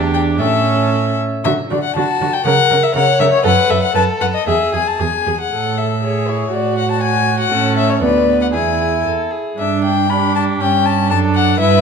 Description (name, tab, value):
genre	quick classical-period movement for string quartet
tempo	113-122 BPM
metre	2/4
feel	rubato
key	A major from 3.4 s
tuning	A4 = 441 Hz
part	warm violin	second line	0.0-11.8 s	E4 to C#5	-22 LUFS	left 1 dB	none
part	rich viola	accompaniment	0.0-11.8 s	B3 to B4	-20 LUFS	right 4 dB	none
part	dark cello	bass	0.0-11.8 s	D2 to D3	-19 LUFS	right 5 dB	none
part	warm violin	melody	0.1-11.8 s	C#5 to B5	-17 LUFS	left 8 dB	none
room	wet recital hall reverb, RT60 1.5 s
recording	dark, warm production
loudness	-13 LUFS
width	side -6 dB against mid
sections	0.0-5.5 A section; 5.5-11.8 B section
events	none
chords	0.4 A; 1.4 D; 2.5 F#/C#; 3.4 F#m; 3.9 B5; 4.5 E; 5.5 A5; 6.5 F#madd9/A; 7.5 A; 8.0 Bm/D; 8.5 E; 9.6 G6; 10.6 A7/G; 11.1 D/F#